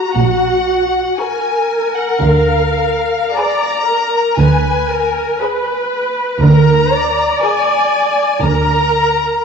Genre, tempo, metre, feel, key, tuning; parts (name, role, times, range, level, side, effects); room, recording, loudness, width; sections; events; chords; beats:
classical, slow romantic movement for string orchestra; 59 BPM; 4/4; rubato; A4 = 441 Hz
rich chamber violin section; melody; 0.0-9.4 s; F5 to Bb5; -17 LUFS; left 4 dB
rich studio viola section; accompaniment; 0.0-9.4 s; Gb4 to D5; -16 LUFS; equal
clear chamber double bass section; bass; 0.2-9.3 s; Bb1 to D2; -16 LUFS; right 4 dB
rich symphonic cello section; bass; 0.2-9.3 s; Bb2 to D3; -18 LUFS; right 1 dB
clear studio violin section; second line; 1.2-8.2 s; Gb4 to B4; -24 LUFS; left 2 dB
wet scoring stage reverb, RT60 1.8 s; dark, warm production, nothing above 7.9 kHz; -12 LUFS; side -6 dB against mid
0.0-9.4 A section
0.0 Ebm (rootless); 2.2 Ddim7; 6.4 Bb7/D
0.16 1.19 | 2.22 3.35 4.39 5.41 | 6.42 7.43 8.45